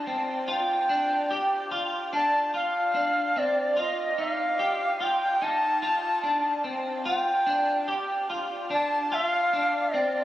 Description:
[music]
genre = dream pop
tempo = 73 BPM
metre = 4/4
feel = straight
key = unclear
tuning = A4 = 439 Hz
[part]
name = bright reedy bass bansuri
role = melody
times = 0.0-10.2 s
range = D5 to A5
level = -25 LUFS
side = equal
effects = shimmer reverb, tape echo
[part]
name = clean electric guitar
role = arpeggios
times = 0.0-10.2 s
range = C4 to G4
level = -29 LUFS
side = equal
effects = ensemble chorus, shimmer reverb, tape echo
[sound]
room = moderate huge ambient reverb, RT60 4.7 s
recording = recorded on a phone in the room, club reverb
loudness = -24 LUFS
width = side -14 dB against mid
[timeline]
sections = 0.0-10.2 A section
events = none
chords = 0.5 G5; 3.8 F5; 7.1 G5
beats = | 0.48 1.31 2.13 2.95 | 3.77 4.59 5.42 6.24 | 7.06 7.88 8.70 9.53

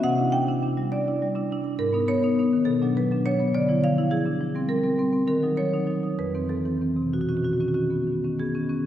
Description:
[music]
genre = classical, contemporary piece for solo marimba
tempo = 68 BPM (dotted quarters)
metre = 6/8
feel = uneven beats, rubato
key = unclear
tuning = A4 = 438 Hz
[part]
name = marimba with medium hard mallets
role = solo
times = 0.0-8.9 s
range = F2 to G5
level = -22 LUFS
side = equal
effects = none
[sound]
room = wet concert hall reverb, RT60 1.9 s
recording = heard from further back in the room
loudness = -22 LUFS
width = side -11 dB against mid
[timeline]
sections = 0.0-8.9 A section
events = none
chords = 0.0 Cadd9 (rootless); 1.8 G#m; 2.7 Bm; 3.5 Dmadd9; 4.4 Fsus2; 5.3 D#m7; 6.2 Fmaj7; 7.1 Badd9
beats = | 0.03 0.91 | 1.79 2.66 | 3.54 4.40 | 5.28 6.18 | 7.12 8.07

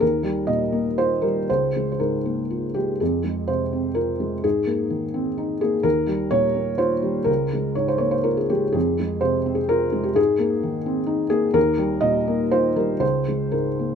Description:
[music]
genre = neoclassical minimalist piano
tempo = 116-131 BPM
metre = 3/4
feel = rubato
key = F minor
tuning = A4 = 440 Hz
[part]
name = felt-muted upright piano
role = solo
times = 0.0-13.9 s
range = Db2 to Eb5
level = -20 LUFS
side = equal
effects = none
[sound]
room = light reverb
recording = minimal, uncompressed stereo recording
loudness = -20 LUFS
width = side -7 dB against mid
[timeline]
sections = 0.0-3.0 A section; 3.0-13.9 A section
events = none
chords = 0.0 Ebadd9; 1.5 Bbm7/Db; 3.0 Fm; 4.4 Abadd9; 5.8 Ebadd9; 7.3 Bbm7/Db; 8.8 Fm; 10.2 Abadd9; 11.6 Ebadd9; 13.0 Bbm7/Db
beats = | 0.02 0.49 0.97 | 1.48 1.99 2.50 | 3.00 3.49 3.97 | 4.44 4.91 5.38 | 5.85 6.32 6.79 | 7.28 7.78 8.27 | 8.76 9.23 9.71 | 10.18 10.64 11.10 | 11.56 12.03 12.52 | 13.02 13.53

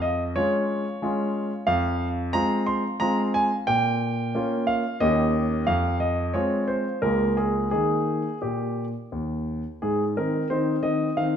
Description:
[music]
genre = classical-period piano sonatina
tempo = 90 BPM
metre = 3/4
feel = rubato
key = Ab major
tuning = A4 = 441 Hz
[part]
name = warm concert grand piano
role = solo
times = 0.0-11.4 s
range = Db2 to C6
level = -22 LUFS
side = equal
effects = none
[sound]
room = wet recital hall reverb, RT60 1.4 s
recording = none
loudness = -22 LUFS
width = side -8 dB against mid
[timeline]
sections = 0.0-9.8 A section; 9.8-11.4 B section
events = none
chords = 0.0 Db/F; 1.7 Fm; 3.7 Bbm; 5.0 Eb7; 5.7 Fm; 7.0 Bbm7/Db; 7.7 Eb; 9.8 Ab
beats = 0.35 1.02 | 1.68 2.34 3.01 | 3.67 4.34 5.00 | 5.67 6.34 7.02 | 7.72 8.42 9.12 | 9.82 10.50 11.17

